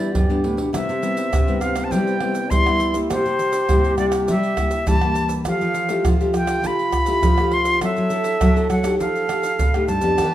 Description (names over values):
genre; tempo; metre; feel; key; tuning
samba and choro; 102 BPM; 4/4; straight; C major; A4 = 440 Hz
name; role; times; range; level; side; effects
silver concert flute; melody; 0.0-10.3 s; C5 to C6; -23 LUFS; equal; none
mellow trombone; second line; 0.0-10.3 s; C4 to A4; -25 LUFS; right 4 dB; none
nylon-string guitar; accompaniment; 0.0-10.3 s; G2 to A4; -25 LUFS; left 3 dB; none
nylon-string guitar; bass; 0.0-10.3 s; F2 to G3; -25 LUFS; left 1 dB; none
surdo, pandeiro, tube shaker and tamborim; percussion; 0.1-10.3 s; none; -22 LUFS; right 1 dB; none
room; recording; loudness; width
moderate large studio reverb, RT60 0.9 s; minimal, uncompressed stereo recording; -17 LUFS; side -12 dB against mid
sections
0.7-10.3 A section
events
none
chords
0.0 G6; 0.7 Cmaj7; 3.1 C7; 5.5 Fmaj9; 7.8 F#m7b5; 9.0 F9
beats
0.15 | 0.74 1.33 1.92 2.51 | 3.10 3.69 4.29 4.88 | 5.47 6.06 6.65 7.24 | 7.83 8.42 9.01 9.60 | 10.19